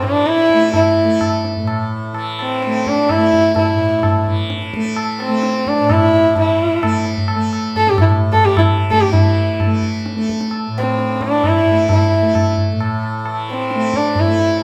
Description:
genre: indian classical, Hindustani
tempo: 129 BPM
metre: 3/4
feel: straight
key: A raga darbari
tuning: A4 = 439 Hz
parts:
  - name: dark sarangi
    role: melody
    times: 0.0-14.6 s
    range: C4 to A4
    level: -18 LUFS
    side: equal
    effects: none
  - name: tanpura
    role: drone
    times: 0.0-14.6 s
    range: A2 to A3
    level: -23 LUFS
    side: equal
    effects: none
  - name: tabla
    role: percussion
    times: 0.0-14.3 s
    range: none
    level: -21 LUFS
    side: equal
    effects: none
room: wet stone room reverb, RT60 1.0 s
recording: band playing live in one room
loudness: -16 LUFS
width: mono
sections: 0.0-9.1 A section; 9.1-14.6 A section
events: speeding up 0.0-14.6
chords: none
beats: 0.26 | 0.74 1.21 1.68 | 2.15 2.62 3.10 | 3.56 4.03 4.50 | 4.97 5.44 5.90 | 6.37 6.83 7.30 | 7.76 8.22 8.69 | 9.15 9.61 10.07 | 10.53 10.98 11.44 | 11.90 12.36 12.81 | 13.27 13.72 14.17 | 14.63

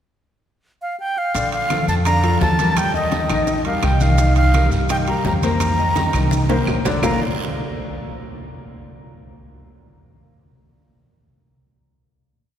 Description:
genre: latin, salsa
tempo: 169 BPM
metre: 4/4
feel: straight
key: Bb major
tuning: A4 = 440 Hz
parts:
  - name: breathy bright concert flute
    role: melody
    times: 0.8-7.2 s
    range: Eb5 to Bb5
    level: -22 LUFS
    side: right 1 dB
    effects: none
  - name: upright bass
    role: bass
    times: 1.3-7.2 s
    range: Bb1 to G2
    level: -20 LUFS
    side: right 1 dB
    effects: none
  - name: bongos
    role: percussion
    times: 1.3-7.1 s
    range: none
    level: -32 LUFS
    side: left 4 dB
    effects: none
  - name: clear grand piano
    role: accompaniment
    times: 1.4-7.2 s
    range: D3 to F5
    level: -23 LUFS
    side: left 3 dB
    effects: none
  - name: congas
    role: percussion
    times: 1.4-7.1 s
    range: none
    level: -27 LUFS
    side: equal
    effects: none
  - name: guiro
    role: percussion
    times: 1.4-7.1 s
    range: none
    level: -37 LUFS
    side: right 5 dB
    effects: none
  - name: maracas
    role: percussion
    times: 1.4-7.1 s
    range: none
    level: -36 LUFS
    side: right 6 dB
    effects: none
  - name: timbales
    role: percussion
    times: 1.4-7.1 s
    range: none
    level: -30 LUFS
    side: right 4 dB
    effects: none
  - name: claves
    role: percussion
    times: 1.7-7.1 s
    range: none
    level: -35 LUFS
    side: right 2 dB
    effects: none
room: wet cathedral reverb, RT60 4.5 s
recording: recorded in a church or concert hall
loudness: -16 LUFS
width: side -10 dB against mid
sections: 0.0-1.4 pickup bar; 1.4-7.0 verse; 7.0-8.5 final chord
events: drum fill 6.1-7.0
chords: 0.0 N.C.; 1.4 Bbmaj7; 2.8 Eb6; 4.2 Cm7; 5.6 F7sus4; 7.0 Bbmaj7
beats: 0.29 0.65 1.00 | 1.36 1.71 2.06 2.42 | 2.77 3.12 3.48 3.83 | 4.19 4.54 4.89 5.25 | 5.61 5.96 6.32 6.67 | 7.03

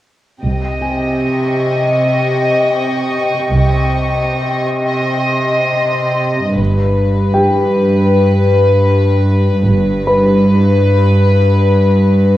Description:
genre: cinematic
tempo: 78 BPM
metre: 4/4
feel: straight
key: C harmonic minor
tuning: A4 = 440 Hz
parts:
  - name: rich studio violin section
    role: melody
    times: 0.4-12.4 s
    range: B4 to Eb5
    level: -16 LUFS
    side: left 3 dB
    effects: none
  - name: dark chamber double bass section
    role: bass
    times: 0.4-10.4 s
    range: G1 to C2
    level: -18 LUFS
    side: right 2 dB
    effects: tube saturation
  - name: warm studio cello section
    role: bass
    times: 0.4-12.4 s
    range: G2 to C3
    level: -14 LUFS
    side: right 1 dB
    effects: tube saturation
  - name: dark studio violin section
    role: texture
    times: 0.4-6.2 s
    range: G5 to Db6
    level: -23 LUFS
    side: left 1 dB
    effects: none
  - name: warm concert grand piano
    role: texture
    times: 0.8-12.4 s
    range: G4 to B5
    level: -20 LUFS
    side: equal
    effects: none
room: moderate scoring stage reverb, RT60 1.9 s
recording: worn, warbling old tape, cassette tape, warbly pitch drift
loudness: -11 LUFS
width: side -14 dB against mid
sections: 0.4-12.4 A section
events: none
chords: 0.4 Cm; 6.6 G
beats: | 0.43 1.20 1.97 2.74 | 3.51 4.28 5.05 5.82 | 6.59 7.36 8.12 8.89 | 9.66 10.43 11.20 11.97

